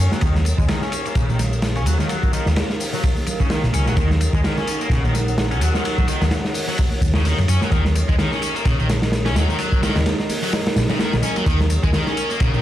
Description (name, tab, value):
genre	breakbeat, breaks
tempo	128 BPM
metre	4/4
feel	swing 57% on 16ths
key	Eb minor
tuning	A4 = 439 Hz
part	dark analog pad	sustained chords	0.0-12.6 s	Eb4 to Gb5	-28 LUFS	right 1 dB	chorus, sidechain pumping
part	sludgy distorted guitar	riff	0.0-12.6 s	Db3 to Db4	-25 LUFS	left 1 dB	overdrive, low-pass filter, tape echo
part	hollow-body short-scale fingered electric bass	bass	0.0-12.6 s	Bb1 to Gb2	-19 LUFS	equal	none
part	crunchy breakbeat drum kit	drums	0.1-12.5 s	hi-hat, kick drum, ride cymbal, snare drum	-21 LUFS	equal	none
part	tambourine	drums	0.1-12.6 s	none	-34 LUFS	left 4 dB	none
part	congas	percussion	0.1-12.6 s	none	-32 LUFS	right 5 dB	none
room	light reverb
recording	played on a big sound system in a bare room, stone room reverb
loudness	-17 LUFS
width	side -13 dB against mid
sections	0.0-12.6 A section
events	filter sweep on distorted electric guitar 0.0-12.6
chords	0.0 Ebm7